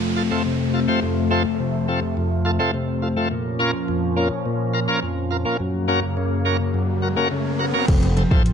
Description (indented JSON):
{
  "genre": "dancehall",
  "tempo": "105 BPM",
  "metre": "4/4",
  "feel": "straight",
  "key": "unclear",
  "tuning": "A4 = 442 Hz",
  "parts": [
    { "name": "bright tonewheel organ", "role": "accompaniment", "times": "0.0-8.4 s", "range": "F2 to C5", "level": "-22 LUFS", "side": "equal", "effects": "overdrive, slow rotary speaker" },
    { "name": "lush unison pad", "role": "sustained chords", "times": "0.0-7.9 s", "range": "F2 to Db4", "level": "-24 LUFS", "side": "left 2 dB", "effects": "chorus, phaser, sidechain pumping" },
    { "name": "downlifter and riser", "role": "sound effects", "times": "0.0-7.9 s", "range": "none", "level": "-32 LUFS", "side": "equal", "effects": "none" },
    { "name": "nylon-string guitar", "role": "arpeggios", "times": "7.9-8.5 s", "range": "F2 to F3", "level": "-22 LUFS", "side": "right 2 dB", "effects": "none" },
    { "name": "upright bass", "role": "bass", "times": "7.9-8.5 s", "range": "F1 to A1", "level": "-21 LUFS", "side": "equal", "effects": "none" },
    { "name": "afro-pop drum kit", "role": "drums", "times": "7.9-8.5 s", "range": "crash cymbal, hi-hat, kick drum", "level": "-18 LUFS", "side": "equal", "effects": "none" }
  ],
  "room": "light reverb",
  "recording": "dark, warm production",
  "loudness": "-19 LUFS",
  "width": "side -7 dB against mid",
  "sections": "0.0-7.9 A section",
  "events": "riser 6.7-7.9",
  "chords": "0.0 F; 3.3 Bbm; 5.6 Gb; 7.9 F"
}